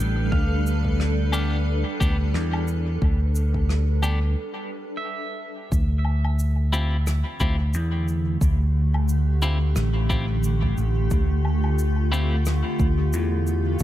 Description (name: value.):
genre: ambient dub.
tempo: 89 BPM.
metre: 4/4.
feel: swing 56% on 16ths.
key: D dorian.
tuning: A4 = 440 Hz.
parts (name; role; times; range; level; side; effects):
granular cloud pad; sustained chords; 0.0-13.8 s; D3 to B4; -29 LUFS; equal; built-in reverb.
pedal steel guitar; arpeggios; 0.0-6.5 s; G3 to G5; -36 LUFS; right 4 dB; tape echo.
fingered electric bass; bass; 0.0-13.8 s; A1 to E2; -21 LUFS; equal; none.
electronic kick drum; drums; 0.3-13.8 s; none; -24 LUFS; equal; none.
cabasa, rim click and woodblock; drums; 0.7-13.8 s; none; -36 LUFS; left 2 dB; dub echo.
clean electric guitar; stabs; 1.3-12.4 s; B3 to G4; -33 LUFS; left 2 dB; spring reverb, low-pass filter, dub echo.
room: little or no reverb.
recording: none.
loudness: -20 LUFS.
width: side -13 dB against mid.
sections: 0.0-5.7 A section; 5.7-13.8 A section.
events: break 4.4-5.7.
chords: 0.0 G; 5.7 Dmadd9.